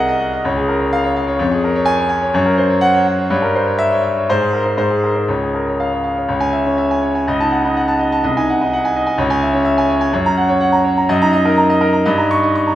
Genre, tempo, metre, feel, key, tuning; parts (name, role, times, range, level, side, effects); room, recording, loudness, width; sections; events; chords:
classical, virtuoso piano study; 125 BPM; 2/4; rubato; Db major, C# minor from 6.3 s; A4 = 440 Hz
bright concert grand piano; solo; 0.0-12.8 s; C2 to Db6; -13 LUFS; equal
moderate recital hall reverb, RT60 1.5 s; -13 LUFS; side -13 dB against mid
0.0-6.3 A section; 6.3-12.8 B section
0.4 Db; 1.4 Db/F; 2.4 Gb; 3.3 Gdim7; 4.3 Ab; 5.3 Db; 6.3 C#m; 7.3 D#m7b5/C#; 8.2 G#7/B#; 9.2 C#m; 10.1 Gb; 11.1 Ebm/Gb; 12.0 Eb7/G